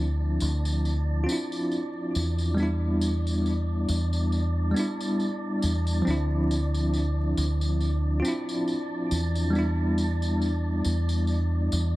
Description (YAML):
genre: trip hop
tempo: 69 BPM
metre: 4/4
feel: swing 56% on 16ths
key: D dorian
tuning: A4 = 445 Hz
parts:
  - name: bell-like tine electric piano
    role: accompaniment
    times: 0.0-12.0 s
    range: F3 to F4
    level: -28 LUFS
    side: equal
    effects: tremolo, tape echo
  - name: deep dub fingered electric bass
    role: bass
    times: 0.0-12.0 s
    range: D2 to E2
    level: -25 LUFS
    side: equal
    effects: none
  - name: wind-like tuned noise texture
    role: texture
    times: 0.0-12.0 s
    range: D4 to D5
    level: -38 LUFS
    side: right 1 dB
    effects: built-in reverb
  - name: tambourine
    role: percussion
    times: 0.4-11.9 s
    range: none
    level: -38 LUFS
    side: left 1 dB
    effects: none
room: light reverb, small room ambience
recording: dark, warm production, vinyl crackle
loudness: -24 LUFS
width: side -18 dB against mid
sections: 0.0-12.0 A section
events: none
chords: 0.0 Dm9; 2.6 Em7; 6.1 Dm9; 9.5 Em7